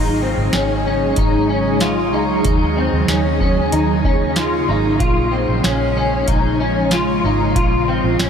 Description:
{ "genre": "dream pop", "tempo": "94 BPM", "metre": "4/4", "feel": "straight", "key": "Bb minor", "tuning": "A4 = 439 Hz", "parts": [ { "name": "ethereal airy pad", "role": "sustained chords", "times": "0.0-8.3 s", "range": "Db3 to C5", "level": "-20 LUFS", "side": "right 2 dB", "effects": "ensemble chorus, built-in reverb" }, { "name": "electric guitar at the edge of break-up", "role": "arpeggios", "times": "0.0-8.3 s", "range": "C4 to F4", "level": "-19 LUFS", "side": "left 2 dB", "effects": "ensemble chorus, ping-pong delay" }, { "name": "vintage muted fingered electric bass", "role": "bass", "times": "0.0-8.3 s", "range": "Ab1 to Eb2", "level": "-22 LUFS", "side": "equal", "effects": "none" }, { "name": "booming analog drum machine", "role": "drums", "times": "0.5-8.3 s", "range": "hi-hat, kick drum, snare drum", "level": "-22 LUFS", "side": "equal", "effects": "none" } ], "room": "moderate shimmer reverb, RT60 4.3 s", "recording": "none", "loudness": "-14 LUFS", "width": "side -7 dB against mid", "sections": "0.0-8.3 A section", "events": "none", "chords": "0.0 Ab7sus4; 2.5 Ebm7; 5.0 Bbm7", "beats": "0.54 1.17 1.81 | 2.45 3.09 3.73 4.37 | 5.00 5.64 6.28 6.92 | 7.56 8.20" }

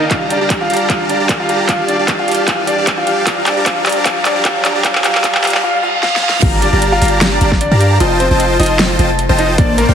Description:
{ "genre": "future bass", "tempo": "152 BPM", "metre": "4/4", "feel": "swing 54% on 16ths, half-time", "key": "G minor", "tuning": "A4 = 440 Hz", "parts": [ { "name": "bright concert grand piano", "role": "melody", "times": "0.0-9.9 s", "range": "Bb3 to F5", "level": "-18 LUFS", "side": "equal", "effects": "sidechain pumping, dub echo" }, { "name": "dense compressed supersaw", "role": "riff", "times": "0.0-9.9 s", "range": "Bb3 to Bb5", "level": "-16 LUFS", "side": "equal", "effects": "sidechain pumping" }, { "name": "riser and reverse cymbal", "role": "sound effects", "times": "0.0-6.4 s", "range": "none", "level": "-24 LUFS", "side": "right 2 dB", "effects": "none" }, { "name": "big-room dance drum kit", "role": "drums", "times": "0.1-9.9 s", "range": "crash cymbal, handclaps, hi-hat, snare drum", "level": "-17 LUFS", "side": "equal", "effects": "overdrive" }, { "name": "electronic kick drum", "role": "drums", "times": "0.1-9.7 s", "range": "none", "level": "-18 LUFS", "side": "equal", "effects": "overdrive" }, { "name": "airy dreamy lead", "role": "arpeggios", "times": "6.4-9.9 s", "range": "G5 to Bb5", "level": "-21 LUFS", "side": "left 1 dB", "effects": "chorus, sidechain pumping" }, { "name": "warm 808-style bass", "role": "bass", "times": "6.4-9.9 s", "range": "F1 to G2", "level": "-15 LUFS", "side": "equal", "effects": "sidechain pumping" } ], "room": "moderate lush hall reverb, RT60 2.2 s", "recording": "heavily compressed radio sound, multiband compression, high-pass filter", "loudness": "-11 LUFS", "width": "side -8 dB against mid", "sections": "0.0-6.4 A section; 6.4-9.9 B section", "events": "build-up 0.0-6.4; riser 0.0-5.6; drum fill 0.1-5.6, 6.0-6.4; reverse cymbal 5.6-6.4; drop 6.4-9.9", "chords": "0.1 Gm9; 1.7 Fadd9; 3.3 Dmadd11; 8.0 F9", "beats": "| 0.11 0.50 0.90 1.29 | 1.69 2.08 2.48 2.87 | 3.27 3.66 4.06 4.45 | 4.84 5.24 5.63 6.03 | 6.42 6.82 7.21 7.61 | 8.00 8.40 8.79 9.19 | 9.58" }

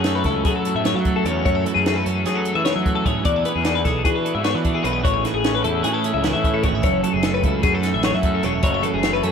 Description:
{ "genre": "math rock and midwest emo", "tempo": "301 BPM (eighths)", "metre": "9/8", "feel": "straight", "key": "unclear", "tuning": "A4 = 440 Hz", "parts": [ { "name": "twelve-string electric guitar", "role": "accompaniment", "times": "0.0-9.3 s", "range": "F#2 to A4", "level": "-24 LUFS", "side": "right 8 dB", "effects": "dub echo" }, { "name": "twelve-string electric guitar", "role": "arpeggios", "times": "0.0-9.3 s", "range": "G#4 to E5", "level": "-22 LUFS", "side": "left 8 dB", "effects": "wide subtle chorus, dub echo" }, { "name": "fuzz picked electric bass", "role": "bass", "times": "0.0-9.3 s", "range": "E1 to F#3", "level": "-24 LUFS", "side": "equal", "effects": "overdrive" }, { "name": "compact cocktail drum kit", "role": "drums", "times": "0.0-9.3 s", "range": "hi-hat, kick drum, snare drum", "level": "-24 LUFS", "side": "equal", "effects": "dub echo" } ], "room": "light reverb, small room ambience", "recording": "echo-heavy mix", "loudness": "-18 LUFS", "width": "side -7 dB against mid", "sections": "0.0-9.3 A section", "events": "none", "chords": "0.0 F#m7; 1.5 B9sus4/F# (rootless); 3.3 E7; 5.1 Amaj7; 6.8 F#m7; 8.6 B9sus4/F#", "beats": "0.06 0.26 0.46 0.66 0.86 1.06 1.26 | 1.46 1.66 1.86 2.06 2.26 2.46 2.66 2.86 3.06 | 3.26 3.46 3.66 3.86 4.06 4.26 4.46 4.66 4.86 | 5.05 5.25 5.45 5.65 5.85 6.05 6.25 6.45 6.65 | 6.85 7.05 7.25 7.45 7.65 7.84 8.04 8.24 8.44 | 8.64 8.84 9.04 9.24" }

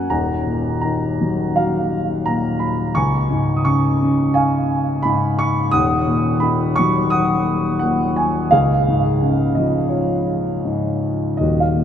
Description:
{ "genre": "classical, lyrical solo piano", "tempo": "85 BPM", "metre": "4/4", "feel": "uneven beats, rubato", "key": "unclear", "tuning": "A4 = 442 Hz", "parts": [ { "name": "dark grand piano", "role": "solo", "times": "0.0-11.8 s", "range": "D#1 to D#6", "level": "-16 LUFS", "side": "equal", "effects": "none" } ], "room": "wet cathedral reverb, RT60 6.2 s", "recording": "in a vast, echoing space", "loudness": "-16 LUFS", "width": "side -9 dB against mid", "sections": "0.1-11.8 A section", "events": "none", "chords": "0.1 D#madd9; 3.0 C#9; 5.7 D#m; 8.5 C#", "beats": "| 0.09 0.82 1.56 2.26 | 2.95 3.65 4.35 5.05 | 5.74 6.43 7.12 7.81 | 8.51 9.21 9.91 10.64 | 11.38" }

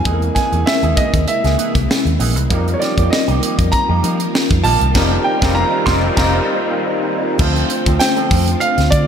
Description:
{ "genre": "polished 1980s jazz-funk pop", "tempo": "98 BPM", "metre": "4/4", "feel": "swing 54% on 16ths", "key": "unclear", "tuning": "A4 = 440 Hz", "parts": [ { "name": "clear baby grand piano", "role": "melody", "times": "0.0-9.1 s", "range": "Db5 to C6", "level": "-20 LUFS", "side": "right 2 dB", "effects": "slapback echo" }, { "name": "overdriven tine electric piano", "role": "accompaniment", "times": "0.0-9.1 s", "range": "G3 to C5", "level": "-20 LUFS", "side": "left 1 dB", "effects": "ensemble chorus, slapback echo" }, { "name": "string machine, violins", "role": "sustained chords", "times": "0.0-9.1 s", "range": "C3 to F4", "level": "-27 LUFS", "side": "equal", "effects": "ensemble chorus" }, { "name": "electric guitar with an envelope filter", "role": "riff", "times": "0.0-8.8 s", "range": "E3 to A4", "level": "-25 LUFS", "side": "right 6 dB", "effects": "wide subtle chorus, slapback echo" }, { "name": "vintage muted fingered electric bass", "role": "bass", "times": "0.1-9.1 s", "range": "F1 to F3", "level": "-17 LUFS", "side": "equal", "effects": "none" }, { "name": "crisp fusion drum kit", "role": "drums", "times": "0.1-9.1 s", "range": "crash cymbal, hi-hat, kick drum, snare drum", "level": "-18 LUFS", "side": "equal", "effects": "none" } ], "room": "moderate lush hall reverb, RT60 2.4 s", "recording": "big arena sound", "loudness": "-13 LUFS", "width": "side -8 dB against mid", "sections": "0.0-7.4 A section; 7.4-9.1 B section", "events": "band accent 5.0-7.4", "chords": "0.1 C7alt; 2.5 F9sus4; 7.4 Dm7", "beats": "| 0.06 0.67 1.28 1.89 | 2.50 3.12 3.73 4.34 | 4.95 5.56 6.17 6.78 | 7.39 8.01 8.62" }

